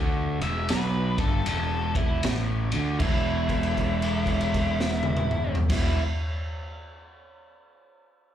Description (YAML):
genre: blues rock power trio and southern rock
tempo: 78 BPM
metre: 4/4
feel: swing 64% on 8ths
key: E minor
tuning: A4 = 440 Hz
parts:
  - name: crunchy overdriven guitar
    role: riff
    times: 0.0-6.0 s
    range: E2 to E3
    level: -32 LUFS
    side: left 2 dB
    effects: none
  - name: fuzz fingered electric bass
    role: bass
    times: 0.0-6.0 s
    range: E1 to D2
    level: -27 LUFS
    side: equal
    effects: overdrive
  - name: octave-fuzz lead guitar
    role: melody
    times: 0.4-6.0 s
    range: E4 to E5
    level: -31 LUFS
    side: equal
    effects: distortion, slapback echo
  - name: raw garage drum kit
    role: drums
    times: 0.4-5.9 s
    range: crash cymbal, kick drum, ride cymbal, snare drum, toms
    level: -28 LUFS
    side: equal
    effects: none
room: studio reverb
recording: live gig heard through the venue's PA, club reverb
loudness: -23 LUFS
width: side -10 dB against mid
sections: 0.0-3.0 A section; 3.0-6.1 B section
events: held note 3.0-5.6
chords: 0.0 Em; 3.0 E5